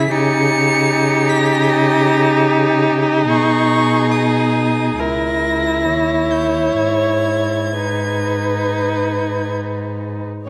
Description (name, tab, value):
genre	classical, slow romantic movement for string quartet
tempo	62-76 BPM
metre	4/4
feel	rubato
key	G# minor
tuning	A4 = 440 Hz
part	warm violin	melody	0.0-10.5 s	C#5 to C#7	-25 LUFS	equal	none
part	warm violin	second line	0.0-10.5 s	G4 to C#5	-23 LUFS	equal	none
part	clear viola	accompaniment	0.0-10.3 s	D#4 to E4	-20 LUFS	equal	none
part	rich cello	bass	0.0-10.5 s	C#2 to C#3	-22 LUFS	equal	none
room	moderate scoring stage reverb, RT60 1.8 s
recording	none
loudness	-16 LUFS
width	mono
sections	0.0-10.5 A section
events	none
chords	0.1 D#7/C#; 3.3 G#m/B; 5.0 A#dim/C#; 5.9 D#7b9; 6.8 G#m